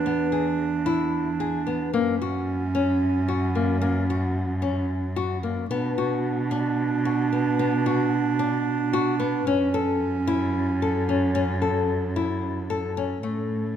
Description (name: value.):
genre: contemporary instrumental, chamber music in an uneven meter.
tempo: 223 BPM (eighths).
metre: 7/8.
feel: straight.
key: unclear.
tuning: A4 = 440 Hz.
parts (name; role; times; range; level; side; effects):
dark clarinet; second line; 0.0-13.8 s; C#4 to D4; -26 LUFS; right 5 dB; none.
dark cello; bass; 0.0-13.8 s; E2 to B2; -28 LUFS; equal; none.
nylon-string guitar; arpeggios; 0.1-13.7 s; A3 to A4; -27 LUFS; left 6 dB; none.
room: moderate scoring stage reverb, RT60 1.9 s.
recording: dark, warm production.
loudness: -22 LUFS.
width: side -9 dB against mid.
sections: 0.0-13.2 A section.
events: none.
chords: 0.0 E; 1.9 F#; 5.7 Bm; 9.5 F#m7; 13.2 A.